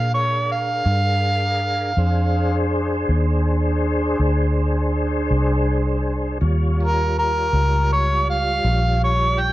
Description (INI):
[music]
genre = slow blues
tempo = 54 BPM (dotted quarters)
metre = 12/8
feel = straight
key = Bb mixolydian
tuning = A4 = 444 Hz
[part]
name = overdriven harmonica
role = melody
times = 0.0-9.5 s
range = Bb4 to G5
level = -21 LUFS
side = right 1 dB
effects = plate reverb
[part]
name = tonewheel organ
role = sustained chords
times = 0.0-9.5 s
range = G3 to Db5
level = -24 LUFS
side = equal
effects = chorus vibrato, slow rotary speaker, plate reverb
[part]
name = vintage muted fingered electric bass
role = bass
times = 0.0-9.5 s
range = Bb1 to Bb2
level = -20 LUFS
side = equal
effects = none
[sound]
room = light reverb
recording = none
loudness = -17 LUFS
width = side -15 dB against mid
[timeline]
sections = 0.0-9.5 A section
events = none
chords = 0.0 Bb9; 6.4 Eb9